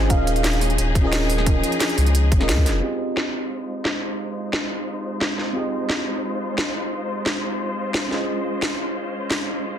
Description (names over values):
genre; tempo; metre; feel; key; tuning
liquid drum and bass; 176 BPM; 4/4; straight; F minor; A4 = 436 Hz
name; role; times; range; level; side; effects
warm velvety synth lead; melody; 0.0-0.6 s; F5; -30 LUFS; right 2 dB; chorus, dub echo
mellow FM electric piano; accompaniment; 0.0-9.8 s; C4 to Eb5; -27 LUFS; equal; chorus, low-pass filter, tape echo
clear symphonic string section; sustained chords; 0.0-9.8 s; F3 to C5; -29 LUFS; left 1 dB; sidechain pumping, low-pass filter
warm sub bass; bass; 0.0-2.8 s; Eb1 to Eb2; -20 LUFS; equal; none
electronic kick drum; drums; 0.1-2.6 s; none; -21 LUFS; equal; none
garage drum kit; drums; 0.1-9.4 s; hi-hat, snare drum; -25 LUFS; equal; low-pass filter on hats, low-pass filter on snare, low-pass filter on room
room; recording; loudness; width
light reverb, digital ambience; dense, heavily limited modern master; -20 LUFS; side -9 dB against mid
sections
0.0-2.8 A section; 2.8-9.8 B section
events
drop 0.0-2.8; filter sweep on FM electric piano 2.8-9.8; filter sweep on string section 2.8-9.8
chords
0.1 Eb9sus4; 2.8 Fm7; 8.1 Dbmaj7